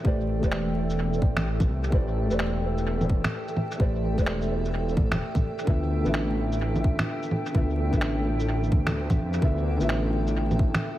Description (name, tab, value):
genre	future garage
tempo	128 BPM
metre	4/4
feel	swing 63% on 16ths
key	D dorian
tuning	A4 = 440 Hz
part	felt-muted upright piano	accompaniment	0.0-11.0 s	D3 to E5	-30 LUFS	left 1 dB	sidechain pumping, tape echo
part	granular cloud pad	sustained chords	0.0-11.0 s	A4 to G5	-34 LUFS	right 1 dB	built-in reverb, sidechain pumping
part	swelling detuned saw bass	bass	0.0-10.7 s	E1 to F2	-27 LUFS	equal	sidechain pumping
part	electronic kick drum	drums	0.0-10.7 s	none	-24 LUFS	equal	none
part	electronic shaker, finger snaps and bongos	drums	0.4-10.8 s	none	-31 LUFS	right 1 dB	dub echo
room	light reverb, digital ambience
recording	echo-heavy mix, vinyl crackle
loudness	-23 LUFS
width	side -14 dB against mid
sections	0.0-11.0 A section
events	none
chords	0.0 Am11; 5.7 Dm69